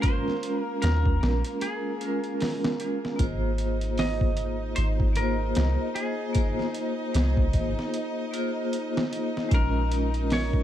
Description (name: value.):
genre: trip hop.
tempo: 76 BPM.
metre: 4/4.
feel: swing 58% on 16ths.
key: unclear.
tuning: A4 = 444 Hz.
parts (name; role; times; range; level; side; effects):
semi-hollow electric guitar; melody; 0.0-10.6 s; Ab4 to Eb5; -34 LUFS; left 1 dB; tape echo.
vibraphone with hard mallets; accompaniment; 0.0-10.6 s; Ab3 to C5; -30 LUFS; equal; tremolo.
clear studio violin section; sustained chords; 0.0-10.6 s; Bb3 to Eb5; -38 LUFS; equal; none.
trip hop sampler-style drum kit; drums; 0.0-10.6 s; hi-hat, kick drum, snare drum; -27 LUFS; equal; overdrive.
soft 808-style bass; bass; 0.8-10.6 s; Ab1 to Eb2; -26 LUFS; equal; none.
bowed-like drone; texture; 3.8-10.6 s; Eb4; -39 LUFS; equal; built-in reverb.
room: digital ambience.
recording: dark, warm production.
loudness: -24 LUFS.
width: side -11 dB against mid.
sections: 0.0-10.6 A section.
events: break 1.6-3.2.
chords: 0.0 Bbm7; 3.2 Ab69; 9.5 Bbm7.